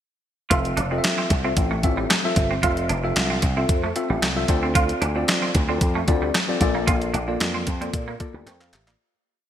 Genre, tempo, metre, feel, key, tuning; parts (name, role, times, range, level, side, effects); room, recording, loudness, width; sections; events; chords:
early-eighties boogie funk; 113 BPM; 4/4; straight; F major; A4 = 441 Hz
tine electric piano; accompaniment; 0.5-9.1 s; Bb3 to G5; -26 LUFS; left 2 dB; wide subtle chorus
clean electric guitar; riff; 0.5-9.0 s; G3 to F4; -28 LUFS; right 4 dB; ensemble chorus
slap bass with an envelope filter; bass; 0.5-8.9 s; F1 to Bb2; -25 LUFS; equal
crisp 8-bit digital drum machine; drums; 0.5-9.0 s; handclaps, hi-hat, kick drum, snare drum; -22 LUFS; equal; overdrive, gated reverb
moderate lush hall reverb, RT60 2.1 s; bright 1980s-style digital production; -19 LUFS; side -10 dB against mid
0.5-9.0 verse
fade-out 6.9-9.0; tine electric piano fill 8.2-9.0; drum fill 8.5-9.0
0.5 Fmaj7; 4.5 Dm7; 6.6 Bbmaj7